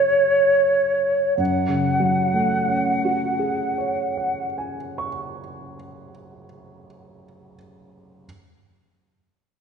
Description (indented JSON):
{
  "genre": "classical, impressionist duo for flute and grand piano",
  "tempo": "51 BPM",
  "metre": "4/4",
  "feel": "rubato",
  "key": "F# minor",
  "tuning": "A4 = 441 Hz",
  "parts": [
    { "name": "silver concert flute", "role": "melody", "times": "0.0-4.4 s", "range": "C#5 to F#5", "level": "-20 LUFS", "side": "equal", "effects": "none" },
    { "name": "warm grand piano", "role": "accompaniment", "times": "0.0-8.3 s", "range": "F#2 to C#6", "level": "-26 LUFS", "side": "equal", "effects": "none" }
  ],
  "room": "wet scoring stage reverb, RT60 1.8 s",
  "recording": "heard from further back in the room, nothing above 10.8 kHz",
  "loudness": "-19 LUFS",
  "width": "side -6 dB against mid",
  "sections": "0.0-1.4 A section; 1.4-6.1 B section",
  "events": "slowing down 0.0-1.4",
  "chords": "0.0 F#madd9",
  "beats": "0.14 | 1.39 2.58 3.75 4.93"
}